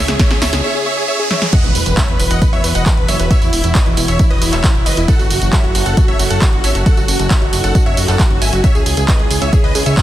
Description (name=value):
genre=uplifting trance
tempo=135 BPM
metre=4/4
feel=straight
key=unclear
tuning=A4 = 441 Hz
part: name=supersaw chords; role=melody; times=0.0-10.0 s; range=E4 to G#5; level=-19 LUFS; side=equal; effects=vintage 12-bit sampler grit, sidechain pumping, tape echo
part: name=lush unison pad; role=sustained chords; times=0.0-10.0 s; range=C#3 to C#5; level=-24 LUFS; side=equal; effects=chorus, sidechain pumping
part: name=fat analog bass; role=bass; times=0.0-9.9 s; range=E1 to C#2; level=-18 LUFS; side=equal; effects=sidechain pumping
part: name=riser and impact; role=sound effects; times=0.1-3.3 s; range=none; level=-22 LUFS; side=right 1 dB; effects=none
part: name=punchy analog drum machine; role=drums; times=0.1-10.0 s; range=crash cymbal, handclaps, hi-hat, snare drum, tambourine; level=-20 LUFS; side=right 1 dB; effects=sidechain pumping on hats, sidechain pumping on perc, sidechain pumping on cymbals
part: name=electronic kick drum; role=drums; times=0.2-10.0 s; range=none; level=-14 LUFS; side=equal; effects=none
part: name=wide unison pluck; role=second line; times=1.5-10.0 s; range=E4 to G#5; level=-27 LUFS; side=right 1 dB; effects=none
room=light reverb, digital ambience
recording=dense, heavily limited modern master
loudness=-11 LUFS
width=side -13 dB against mid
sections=0.0-1.5 A section; 1.5-10.0 B section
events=build-up 0.0-1.5; drum fill 0.0-0.6, 1.3; riser 0.1-1.5; break 0.6-1.5; drop 1.5-10.0; impact 1.5-3.3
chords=0.0 A/C#; 1.5 Esus2; 5.1 F#m7; 8.6 C#m